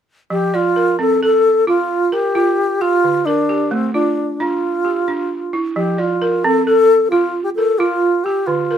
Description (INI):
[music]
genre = west african traditional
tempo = 88 BPM (dotted quarters)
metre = 12/8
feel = straight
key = F major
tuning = A4 = 440 Hz
[part]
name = breathy alto flute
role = melody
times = 0.3-8.8 s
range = C4 to A4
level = -15 LUFS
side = left 1 dB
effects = none
[part]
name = balafon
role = arpeggios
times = 0.3-8.8 s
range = D3 to D5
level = -20 LUFS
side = right 3 dB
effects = none
[sound]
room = light reverb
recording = minimal, uncompressed stereo recording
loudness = -14 LUFS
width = side -9 dB against mid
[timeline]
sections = 0.3-8.8 A section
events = none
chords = 0.3 F; 3.0 Dm; 5.8 F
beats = | 0.31 0.99 1.67 2.36 | 3.04 3.72 4.40 5.08 | 5.76 6.45 7.13 7.81 | 8.48